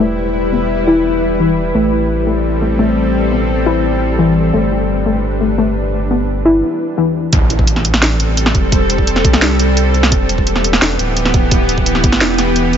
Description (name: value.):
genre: half-time drum and bass.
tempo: 172 BPM.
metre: 4/4.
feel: half-time.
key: A minor.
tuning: A4 = 440 Hz.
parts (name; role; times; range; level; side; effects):
bowed-like drone; sustained chords; 0.0-12.8 s; E3 to B4; -17 LUFS; left 1 dB; built-in reverb, sidechain pumping.
warbly dusty pluck; arpeggios; 0.0-7.3 s; E3 to E4; -16 LUFS; left 2 dB; chorus, ping-pong delay.
saturated sub bass; bass; 0.0-12.8 s; D1 to C2; -18 LUFS; equal; tube saturation.
drum and bass drum kit; drums; 7.3-12.8 s; hi-hat, snare drum; -16 LUFS; equal; overdrive.
electronic kick drum; drums; 7.3-12.1 s; none; -14 LUFS; equal; overdrive.
impact; sound effects; 7.3-8.7 s; none; -22 LUFS; right 1 dB; none.
room: light reverb, digital ambience.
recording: nothing above 7.7 kHz.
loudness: -11 LUFS.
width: side -8 dB against mid.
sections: 0.0-7.3 A section; 7.3-12.8 B section.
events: filter sweep on synth pluck 0.0-7.3; break 6.6-7.3; drop 7.3-12.8; impact 7.3-8.7.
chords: 0.0 Em; 1.7 Am7; 4.5 G; 7.3 Am7; 10.1 Em.